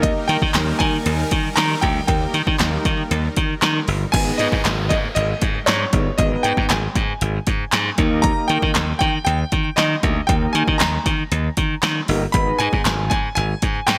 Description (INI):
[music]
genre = dance-pop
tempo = 117 BPM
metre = 4/4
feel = straight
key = G# harmonic minor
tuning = A4 = 437 Hz
[part]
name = clear concert grand piano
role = melody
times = 0.0-14.0 s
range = C#5 to B5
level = -27 LUFS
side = equal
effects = digital delay
[part]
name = mellow synth brass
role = accompaniment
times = 0.0-12.9 s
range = A#3 to D#5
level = -28 LUFS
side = equal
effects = chorus, sidechain pumping
[part]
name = supersaw pad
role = sustained chords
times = 0.0-4.1 s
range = D#3 to A#4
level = -32 LUFS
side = equal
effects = sidechain pumping
[part]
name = glassy slap bass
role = bass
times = 0.0-14.0 s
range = G1 to D#3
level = -23 LUFS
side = equal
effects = sidechain pumping
[part]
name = punchy analog drum machine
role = drums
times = 0.0-14.0 s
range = crash cymbal, handclaps, hi-hat, kick drum, snare drum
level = -23 LUFS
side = equal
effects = gated reverb
[part]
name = downlifter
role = sound effects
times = 4.2-8.2 s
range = none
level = -34 LUFS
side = equal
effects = none
[sound]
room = light reverb, digital ambience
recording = bright 1980s-style digital production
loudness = -19 LUFS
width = mono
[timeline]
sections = 0.0-4.1 A section; 4.1-14.0 B section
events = none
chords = 0.0 D#; 4.1 G#m; 8.0 D#; 12.3 G#m